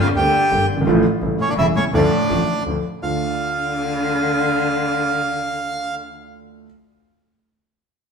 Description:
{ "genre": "tango", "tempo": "167 BPM", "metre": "3/4", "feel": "rubato", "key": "D minor", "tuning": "A4 = 440 Hz", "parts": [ { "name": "bandoneon", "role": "melody", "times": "0.0-6.0 s", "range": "C#4 to G5", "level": "-21 LUFS", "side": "right 2 dB", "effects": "none" }, { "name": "warm cello", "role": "second line", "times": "0.0-5.9 s", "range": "A2 to D3", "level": "-23 LUFS", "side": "left 2 dB", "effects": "none" }, { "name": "warm concert grand piano", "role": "accompaniment", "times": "0.1-6.7 s", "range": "E1 to G4", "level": "-22 LUFS", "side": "right 1 dB", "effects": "none" }, { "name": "clear double bass", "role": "bass", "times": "0.2-3.2 s", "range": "E1 to D2", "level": "-24 LUFS", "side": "left 1 dB", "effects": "none" } ], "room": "wet stone room reverb, RT60 1.5 s", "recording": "band playing live in one room", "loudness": "-17 LUFS", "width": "side -6 dB against mid", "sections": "0.0-3.0 A section; 3.0-5.2 B section", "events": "none", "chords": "0.0 Gm; 0.9 Dm/A; 1.2 A7; 1.9 Dm" }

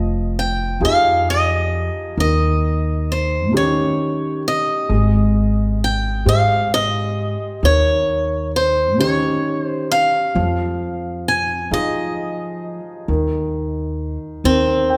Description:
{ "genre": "folk", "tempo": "44 BPM (dotted quarters)", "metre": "6/8", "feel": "straight", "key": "unclear", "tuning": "A4 = 440 Hz", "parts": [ { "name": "picked swing-style acoustic guitar", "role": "melody", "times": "0.0-15.0 s", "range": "C4 to Ab5", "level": "-22 LUFS", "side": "equal", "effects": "none" }, { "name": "clear upright piano", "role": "accompaniment", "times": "0.0-15.0 s", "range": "Eb3 to G5", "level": "-26 LUFS", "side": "equal", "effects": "none" }, { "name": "upright bass", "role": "bass", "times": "0.0-15.0 s", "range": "F1 to F3", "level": "-23 LUFS", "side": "equal", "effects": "none" } ], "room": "wet recital hall reverb, RT60 1.6 s", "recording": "recorded in a church or concert hall", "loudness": "-19 LUFS", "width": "mono", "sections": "0.0-15.0 A section", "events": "none", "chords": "0.0 Fm9; 2.2 Eb7; 4.9 Abmaj7; 7.6 Eb7; 10.4 Fm7; 13.1 N.C.; 14.4 Eb6" }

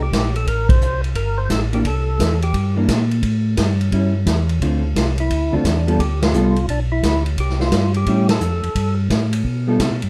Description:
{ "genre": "soul jazz organ trio", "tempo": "174 BPM", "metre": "4/4", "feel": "swing 65% on 8ths", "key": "C mixolydian", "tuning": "A4 = 437 Hz", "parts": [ { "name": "percussive tonewheel organ", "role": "melody", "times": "0.0-2.7, 5.0-8.9 s", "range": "D4 to C5", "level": "-27 LUFS", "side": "equal", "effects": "slow rotary speaker, overdrive" }, { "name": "mellow tonewheel organ", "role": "bass", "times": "0.0-10.1 s", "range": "G1 to C3", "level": "-22 LUFS", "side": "equal", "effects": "slow rotary speaker" }, { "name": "swinging big-band drum kit", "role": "drums", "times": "0.1-10.1 s", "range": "hi-hat, kick drum, ride cymbal, snare drum", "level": "-24 LUFS", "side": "equal", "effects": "none" }, { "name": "vintage hollow-body jazz guitar", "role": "accompaniment", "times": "1.7-9.8 s", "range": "D3 to A4", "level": "-22 LUFS", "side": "equal", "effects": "none" } ], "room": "moderate small room ambience, RT60 0.5 s", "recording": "dark, warm production", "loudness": "-18 LUFS", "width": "mono", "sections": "0.0-10.1 A section", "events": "band accent 0.6, 6.2, 8.2", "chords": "0.0 Fadd9 (rootless); 1.8 C7; 3.2 A7; 4.6 Dm7; 6.0 G9; 7.4 C5; 8.1 A7; 8.8 Gadd9" }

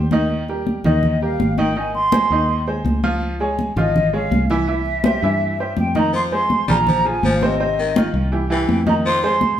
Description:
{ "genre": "latin, salsa", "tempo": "164 BPM", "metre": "4/4", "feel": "straight", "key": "F minor", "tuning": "A4 = 440 Hz", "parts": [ { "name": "bright upright piano", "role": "accompaniment", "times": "0.0-9.5 s", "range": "C3 to F5", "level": "-23 LUFS", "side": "right 1 dB", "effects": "none" }, { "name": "fingered electric bass", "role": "bass", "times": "0.0-9.5 s", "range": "Ab1 to G2", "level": "-23 LUFS", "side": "equal", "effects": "none" }, { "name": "congas", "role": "percussion", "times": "0.1-9.6 s", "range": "none", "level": "-21 LUFS", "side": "equal", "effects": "none" }, { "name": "mellow hollow silver concert flute", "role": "melody", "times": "0.9-9.6 s", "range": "Eb5 to C6", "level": "-20 LUFS", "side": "right 1 dB", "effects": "none" }, { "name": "raspy baritone saxophone", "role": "second line", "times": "6.1-9.4 s", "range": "Eb3 to G3", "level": "-24 LUFS", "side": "left 2 dB", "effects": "none" } ], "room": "wet large studio reverb, RT60 1.0 s", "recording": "band playing live in one room", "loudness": "-16 LUFS", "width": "side -10 dB against mid", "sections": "0.0-6.1 A section; 6.1-9.6 B section", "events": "none", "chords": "0.3 Eb; 1.8 Ab; 3.2 Db; 4.7 C; 6.1 Fm; 6.9 Bb5; 7.6 Ab6; 8.3 C; 9.1 Fm7" }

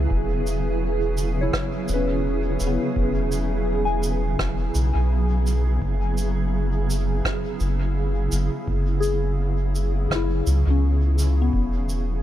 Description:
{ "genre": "ambient dub", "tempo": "84 BPM", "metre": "4/4", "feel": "swing 56% on 16ths", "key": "unclear", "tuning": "A4 = 440 Hz", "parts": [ { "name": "granular cloud pad", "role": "sustained chords", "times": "0.0-12.2 s", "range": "C#3 to G#4", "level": "-27 LUFS", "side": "right 3 dB", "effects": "built-in reverb" }, { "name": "soft synth bell", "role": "arpeggios", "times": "0.0-12.2 s", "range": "B3 to G#5", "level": "-29 LUFS", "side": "left 5 dB", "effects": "chorus, phaser, dub echo" }, { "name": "soft dub sub bass", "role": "bass", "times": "0.0-12.2 s", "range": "E1 to C#2", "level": "-22 LUFS", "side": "equal", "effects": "none" }, { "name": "electronic kick drum", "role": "drums", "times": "0.1-11.7 s", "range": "none", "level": "-29 LUFS", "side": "equal", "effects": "none" }, { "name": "cabasa and rim click", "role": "drums", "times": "0.5-12.1 s", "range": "none", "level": "-31 LUFS", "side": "right 1 dB", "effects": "dub echo" } ], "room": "small room ambience", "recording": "none", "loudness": "-20 LUFS", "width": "side -12 dB against mid", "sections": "0.0-12.2 A section", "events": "none", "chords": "0.1 E; 5.8 F#5; 11.5 E" }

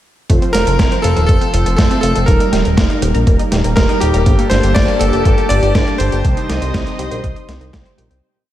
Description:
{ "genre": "italo disco", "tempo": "121 BPM", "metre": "4/4", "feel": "straight", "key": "C dorian", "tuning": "A4 = 437 Hz", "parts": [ { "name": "analog pluck", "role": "arpeggios", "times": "0.3-8.2 s", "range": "A3 to C5", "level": "-24 LUFS", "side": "left 3 dB", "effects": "chorus, cassette tape, diffuse ambient delay" }, { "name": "mellow synth brass", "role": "stabs", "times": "0.3-8.2 s", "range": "G2 to C5", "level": "-22 LUFS", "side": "right 2 dB", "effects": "chorus" }, { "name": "chorused synth bass", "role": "bass", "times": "0.3-8.2 s", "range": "Eb1 to C2", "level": "-16 LUFS", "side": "equal", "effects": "none" }, { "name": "dusty soul sampler-style drum kit", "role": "drums", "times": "0.3-8.2 s", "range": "hi-hat, snare drum", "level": "-21 LUFS", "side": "right 1 dB", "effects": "overdrive, studio reverb" }, { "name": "electronic kick drum", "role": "drums", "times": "0.3-7.8 s", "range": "none", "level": "-15 LUFS", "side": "equal", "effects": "overdrive, studio reverb" }, { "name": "bright electric grand piano", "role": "melody", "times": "0.5-7.7 s", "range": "G4 to D5", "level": "-19 LUFS", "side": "equal", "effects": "diffuse ambient delay" }, { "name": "warm analog pad", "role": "sustained chords", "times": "4.3-8.2 s", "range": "Bb3 to Eb6", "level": "-22 LUFS", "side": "equal", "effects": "chorus" } ], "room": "moderate lush hall reverb, RT60 1.7 s, digital ambience", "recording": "dreamy mix soaked in reverb", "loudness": "-11 LUFS", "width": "side -13 dB against mid", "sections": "0.3-8.2 verse", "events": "fade-out 5.6-8.2", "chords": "0.3 F; 2.3 Eb; 4.3 Gmadd9; 6.2 Cm" }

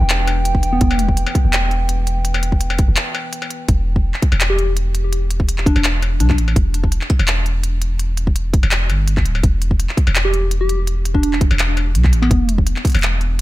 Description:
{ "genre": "half-time drum and bass", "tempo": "167 BPM", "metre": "4/4", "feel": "half-time", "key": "E minor", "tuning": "A4 = 440 Hz", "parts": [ { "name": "dark analog pad", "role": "sustained chords", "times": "0.0-3.7 s", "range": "E3 to G5", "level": "-25 LUFS", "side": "right 2 dB", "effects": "chorus, sidechain pumping" }, { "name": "long sustained 808-style bass", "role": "bass", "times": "0.0-13.4 s", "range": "D1 to B1", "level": "-17 LUFS", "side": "equal", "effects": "none" }, { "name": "industrial drum kit", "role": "drums", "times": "0.1-13.4 s", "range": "handclaps, hi-hat, struck metal", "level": "-22 LUFS", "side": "left 1 dB", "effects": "none" }, { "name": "electronic kick drum", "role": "drums", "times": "0.5-12.9 s", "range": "none", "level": "-16 LUFS", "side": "equal", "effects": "none" }, { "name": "soft struck synth lead", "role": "melody", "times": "0.7-1.1, 4.5-6.4, 10.2-12.6 s", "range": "B3 to G4", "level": "-24 LUFS", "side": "left 1 dB", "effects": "chorus, ping-pong delay" } ], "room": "digital ambience", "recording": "none", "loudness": "-14 LUFS", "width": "side -17 dB against mid", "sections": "0.0-3.7 A section; 3.7-13.4 A section", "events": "drop 0.0-3.7, 3.7-13.4; break 3.0-3.7", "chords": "0.0 E5" }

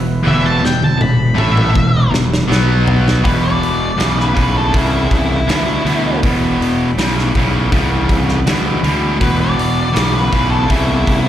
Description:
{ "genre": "blues rock power trio and southern rock", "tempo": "80 BPM", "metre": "4/4", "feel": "straight", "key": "E minor", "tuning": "A4 = 440 Hz", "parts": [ { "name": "overdriven tonewheel organ", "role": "sustained chords", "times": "0.0-11.3 s", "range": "E3 to D5", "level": "-30 LUFS", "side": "right 3 dB", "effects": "none" }, { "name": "distorted electric guitar", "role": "riff", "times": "0.0-11.3 s", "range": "E2 to B3", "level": "-17 LUFS", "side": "equal", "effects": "overdrive, slapback echo" }, { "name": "fuzz fingered electric bass", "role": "bass", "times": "0.0-11.3 s", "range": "E1 to D2", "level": "-17 LUFS", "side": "equal", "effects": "overdrive" }, { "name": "octave-fuzz lead guitar", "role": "melody", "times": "0.3-11.3 s", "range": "E4 to B5", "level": "-20 LUFS", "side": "left 1 dB", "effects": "distortion" }, { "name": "big rock drum kit", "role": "drums", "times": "0.3-11.2 s", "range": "hi-hat, kick drum, snare drum, toms", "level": "-19 LUFS", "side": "equal", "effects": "none" } ], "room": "studio reverb", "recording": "live gig heard through the venue's PA, recital hall reverb", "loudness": "-12 LUFS", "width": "side -11 dB against mid", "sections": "0.0-3.2 A section; 3.2-11.3 B section", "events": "lead electric guitar solo 0.0-3.2; drum fill 0.3-3.2", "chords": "0.0 Em; 2.5 B5; 3.2 Em7" }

